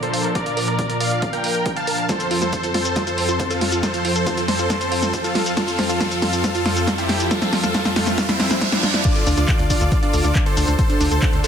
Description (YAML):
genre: uplifting trance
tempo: 138 BPM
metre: 4/4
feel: straight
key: F major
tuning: A4 = 441 Hz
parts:
  - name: big supersaw lead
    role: melody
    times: 0.0-11.5 s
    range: F3 to A5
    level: -23 LUFS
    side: equal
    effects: sidechain pumping, low-pass filter, dub echo
  - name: lush unison pad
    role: sustained chords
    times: 0.0-11.5 s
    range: F2 to Bb4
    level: -25 LUFS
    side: equal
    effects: chorus, sidechain pumping
  - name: wide unison pluck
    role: arpeggios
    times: 0.0-11.5 s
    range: D4 to F5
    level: -28 LUFS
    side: right 3 dB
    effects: sidechain pumping, dub echo
  - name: punchy analog drum machine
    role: drums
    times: 0.0-11.5 s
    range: crash cymbal, handclaps, hi-hat, shaker, snare drum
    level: -23 LUFS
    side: equal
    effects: none
  - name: riser and reverse cymbal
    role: sound effects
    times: 0.0-9.0 s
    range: none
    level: -30 LUFS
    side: right 2 dB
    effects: none
  - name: electronic kick drum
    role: drums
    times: 0.4-11.3 s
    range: none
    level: -22 LUFS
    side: equal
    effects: high-pass filter on kick
  - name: tight sequencer bass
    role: bass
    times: 9.3-11.4 s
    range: D2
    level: -20 LUFS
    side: equal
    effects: sidechain pumping
room: moderate lush hall reverb, RT60 1.9 s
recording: dense, heavily limited modern master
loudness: -17 LUFS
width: side -8 dB against mid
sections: 0.0-9.0 A section; 9.0-11.5 B section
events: build-up 0.0-9.0; riser 0.0-9.0; filter sweep on synth pluck 0.0-9.0; drum fill 2.1-9.0; reverse cymbal 8.2-9.0; drop 9.0-11.5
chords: 0.0 Bb; 2.1 F; 9.0 Dm